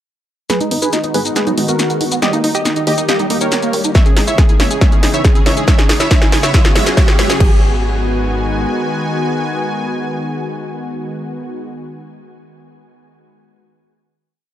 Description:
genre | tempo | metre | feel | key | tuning
uplifting trance | 139 BPM | 4/4 | straight | G# minor | A4 = 440 Hz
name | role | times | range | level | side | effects
supersaw stab | melody | 0.5-11.6 s | D#4 to G#5 | -20 LUFS | right 1 dB | sidechain pumping, low-pass filter, tape echo
lush unison pad | sustained chords | 0.9-11.6 s | C#3 to G4 | -22 LUFS | left 1 dB | chorus, sidechain pumping
liquid acid bass | arpeggios | 0.5-7.6 s | F#3 to G4 | -23 LUFS | right 3 dB | ensemble chorus, sidechain pumping, tape echo
big-room dance drum kit | drums | 0.5-7.5 s | crash cymbal, hi-hat, shaker, snare drum | -19 LUFS | equal | sidechain pumping on hats, sidechain pumping on perc, sidechain pumping on cymbals
riser | sound effects | 3.1-7.4 s | none | -26 LUFS | right 2 dB | none
plucky analog bass | bass | 0.7-8.7 s | F#1 to D#2 | -22 LUFS | equal | sidechain pumping, high-pass filter
electronic kick drum | drums | 4.0-7.5 s | none | -11 LUFS | equal | none
room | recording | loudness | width
little or no reverb | dark, warm production | -12 LUFS | side -12 dB against mid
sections
0.5-7.4 build; 7.4-10.9 final chord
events
build-up 0.5-7.4; drum fill 0.5-7.4; filter sweep on supersaw synth 0.5-7.4; filter sweep on acid bass 0.5-7.4; riser 3.1-7.4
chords
0.5 G#m7; 2.2 D#; 4.0 C#madd9; 5.7 F#sus4; 7.4 G#m7

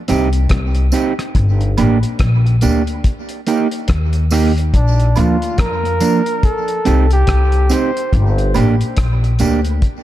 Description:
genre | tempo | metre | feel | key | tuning
dub reggae | 71 BPM | 4/4 | swing 60% on 16ths | unclear | A4 = 440 Hz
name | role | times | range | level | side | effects
mellow electric guitar | accompaniment | 0.1-9.6 s | F3 to G4 | -19 LUFS | right 4 dB | high-pass filter, dub echo
upright bass | bass | 0.1-9.8 s | G1 to F2 | -14 LUFS | left 1 dB | none
cloth-damped thuddy drum kit | drums | 0.1-10.0 s | hi-hat, kick drum, rim click | -18 LUFS | left 1 dB | none
tambourine and woodblock | percussion | 0.1-9.6 s | none | -31 LUFS | right 6 dB | high-pass filter on perc, dub echo
warm flugelhorn | melody | 4.8-8.1 s | D4 to C5 | -20 LUFS | equal | dub echo
room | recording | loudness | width
light reverb, small room ambience | dark, warm production | -13 LUFS | side -13 dB against mid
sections
0.0-10.0 A section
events
filter sweep 8.1-10.0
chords
0.0 Cm; 1.4 Gm; 3.0 Eb; 4.7 Bb; 6.4 Cm; 8.1 Gm

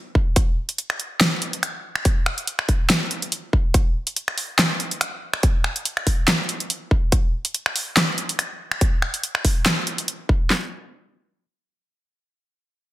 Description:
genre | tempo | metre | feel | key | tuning
dubstep | 142 BPM | 4/4 | swing 54% on 16ths, half-time | none | none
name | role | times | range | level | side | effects
big-room dance drum kit | drums | 0.2-10.6 s | handclaps, kick drum, snare drum | -19 LUFS | equal | overdrive, small room ambience
big-room dance drum kit | drums | 0.4-10.2 s | finger snaps, handclaps, hi-hat, snare drum | -21 LUFS | equal | overdrive, small room ambience
room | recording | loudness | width
light reverb, digital ambience | dense, heavily limited modern master | -20 LUFS | side -15 dB against mid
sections
0.0-10.5 A section; 10.5-12.2 B section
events
none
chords
none

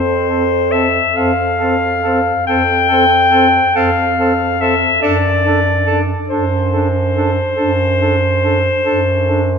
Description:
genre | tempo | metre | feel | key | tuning
classical, lyrical piece for single-reed quartet | 47 BPM (dotted quarters) | 12/8 | rubato | F major | A4 = 440 Hz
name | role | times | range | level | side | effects
bright clarinet | melody | 0.0-9.6 s | C5 to G5 | -14 LUFS | left 3 dB | none
warm bass clarinet | bass | 0.0-9.6 s | F2 to F#2 | -18 LUFS | right 4 dB | none
warm alto saxophone | second line | 0.3-9.4 s | A4 | -22 LUFS | right 5 dB | none
mellow tenor saxophone | accompaniment | 0.3-9.4 s | C4 to D4 | -21 LUFS | left 2 dB | none
room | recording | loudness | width
wet concert hall reverb, RT60 1.8 s | recorded in a church or concert hall | -12 LUFS | side -6 dB against mid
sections
0.0-9.6 A section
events
none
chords
0.0 F; 5.0 D7/F#

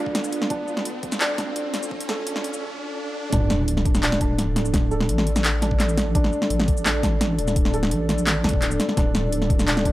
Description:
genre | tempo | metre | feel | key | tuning
half-time drum and bass | 170 BPM | 4/4 | half-time | unclear | A4 = 441 Hz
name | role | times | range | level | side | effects
dark analog pad | sustained chords | 0.0-9.9 s | D4 to D5 | -29 LUFS | equal | chorus, sidechain pumping
felt-muted upright piano | arpeggios | 0.0-9.9 s | D4 to A4 | -29 LUFS | right 2 dB | analog delay
riser and sub drop | sound effects | 0.0-4.7 s | none | -31 LUFS | equal | none
flickering grainy texture | texture | 0.0-2.6 s | F4 | -39 LUFS | equal | built-in reverb
drum and bass drum kit | drums | 0.1-9.9 s | handclaps, hi-hat, shaker, snare drum | -24 LUFS | equal | overdrive
electronic kick drum | drums | 0.1-9.9 s | none | -22 LUFS | equal | overdrive
deep soft wobble bass | bass | 3.3-9.9 s | D1 to A1 | -24 LUFS | equal | chorus
room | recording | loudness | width
digital ambience | dry, gritty hardware recording, high-pass filter | -20 LUFS | side -16 dB against mid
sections
0.0-3.3 A section; 3.3-9.9 B section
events
build-up 0.0-3.3; riser 0.0-3.3; break 2.6-3.3; drop 3.3-9.9; impact 3.3-4.7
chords
0.0 D5

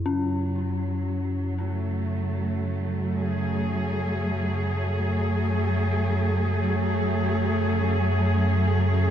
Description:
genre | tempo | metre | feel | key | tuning
dark ambient drone | free time | none | none | F# minor | A4 = 442 Hz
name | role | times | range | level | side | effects
dark detuned synth bell | arpeggios | 0.0-9.1 s | C#4 to E4 | -33 LUFS | left 3 dB | chorus, tape echo
deep rumbling drone | drone | 0.0-9.1 s | F#2 to C#3 | -25 LUFS | equal | built-in reverb, ensemble chorus
warm symphonic cello section | sustained chords | 0.1-9.1 s | F#3 to G#4 | -26 LUFS | right 1 dB | none
room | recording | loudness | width
moderate huge ambient reverb, RT60 7.3 s | dreamy mix soaked in reverb | -23 LUFS | side -9 dB against mid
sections
0.1-9.1 A section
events
none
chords
0.1 F#madd9

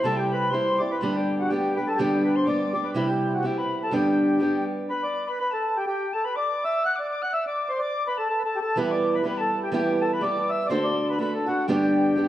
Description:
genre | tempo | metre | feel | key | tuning
celtic folk, Celtic polka | 124 BPM | 2/4 | swing 56% on 8ths | G major | A4 = 440 Hz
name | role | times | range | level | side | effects
mellow accordion | melody | 0.0-12.3 s | F#4 to F#5 | -26 LUFS | equal | none
mellow mid whistle | second line | 0.0-12.3 s | F#5 to F#6 | -33 LUFS | left 3 dB | none
fingerpicked old ladder-braced acoustic guitar | accompaniment | 0.0-4.9, 8.8-12.3 s | G2 to A4 | -24 LUFS | right 1 dB | none
room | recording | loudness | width
wet recital hall reverb, RT60 1.6 s | dark, warm production | -22 LUFS | side -13 dB against mid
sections
0.0-4.9 A section; 4.9-12.3 B section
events
none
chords
0.0 C; 1.0 G; 3.0 C; 3.9 G; 4.9 N.C.; 8.8 Em; 10.7 D; 11.7 G

